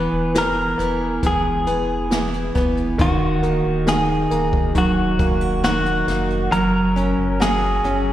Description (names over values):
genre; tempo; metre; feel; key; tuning
pop ballad; 68 BPM; 4/4; straight; unclear; A4 = 439 Hz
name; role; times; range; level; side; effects
direct-recorded clean electric guitar; melody; 0.0-8.1 s; F#4 to B4; -22 LUFS; left 1 dB; spring reverb, slapback echo, digital delay
bright upright piano; accompaniment; 0.0-8.1 s; D#3 to C#4; -22 LUFS; right 1 dB; none
picked steel-string acoustic guitar; arpeggios; 0.0-8.1 s; D#3 to A#4; -25 LUFS; right 2 dB; none
warm sub bass; bass; 0.0-8.1 s; D#1 to F#1; -26 LUFS; equal; none
jazz brush drum kit; drums; 0.4-8.1 s; hi-hat, kick drum, snare drum; -23 LUFS; equal; none
room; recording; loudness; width
light reverb, studio ambience; live gig heard through the venue's PA, recital hall reverb; -17 LUFS; side -12 dB against mid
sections
0.0-8.1 A section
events
none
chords
0.0 E; 3.0 D#m; 6.5 F#